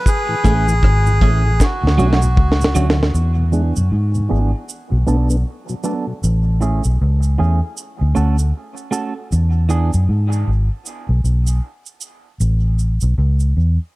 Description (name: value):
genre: dub reggae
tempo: 78 BPM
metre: 4/4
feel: swing 60% on 16ths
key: unclear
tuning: A4 = 438 Hz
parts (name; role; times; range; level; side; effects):
- melodica; melody; 0.0-2.7 s; F#4 to G#4; -23 LUFS; equal; dub echo
- deep reggae drum kit; drums; 0.1-3.2 s; hi-hat, kick drum, rim click, snare drum; -16 LUFS; equal; none
- cabasa; percussion; 0.1-13.5 s; none; -31 LUFS; right 7 dB; none
- mellow tonewheel organ; accompaniment; 0.3-6.1 s; D2 to G#4; -25 LUFS; left 2 dB; slow rotary speaker, low-pass filter
- clean electric guitar; accompaniment; 0.4-9.9 s; E3 to A4; -24 LUFS; right 4 dB; low-pass filter, dub echo
- vintage muted fingered electric bass; bass; 0.5-13.8 s; G#1 to G#2; -15 LUFS; equal; none
room: small room reverb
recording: none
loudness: -15 LUFS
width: side -20 dB against mid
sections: 0.0-3.1 A section; 3.1-14.0 B section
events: drum fill 1.6-3.1; filter sweep 3.1-14.0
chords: 0.1 Amaj7; 1.6 Dmaj7; 3.1 E7; 4.7 Bm7; 6.2 Amaj7; 7.8 Dmaj7; 9.3 E7; 10.9 N.C.; 12.4 A